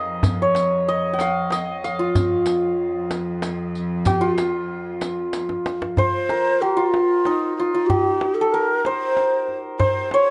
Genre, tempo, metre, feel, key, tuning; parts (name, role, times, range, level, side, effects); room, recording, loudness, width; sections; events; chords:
Persian modal ensemble; 63 BPM (dotted quarters); 6/8; straight; F dastgah shur, Bb avaz esfahan from 6.0 s; A4 = 442 Hz
santur; melody; 0.0-10.3 s; Eb4 to Gb5+45c; -23 LUFS; equal
clear studio cello section; drone; 0.0-6.0 s; F2; -32 LUFS; equal
riq; percussion; 0.2-5.7 s; -36 LUFS; equal
tombak; percussion; 0.2-10.3 s; -26 LUFS; equal
breathy low ney; second line; 6.0-10.3 s; F4 to Db5; -25 LUFS; equal
light reverb; nothing above 10.9 kHz; -21 LUFS; mono
0.0-6.0 A section; 6.0-10.3 B section
drum fill 5.3-6.0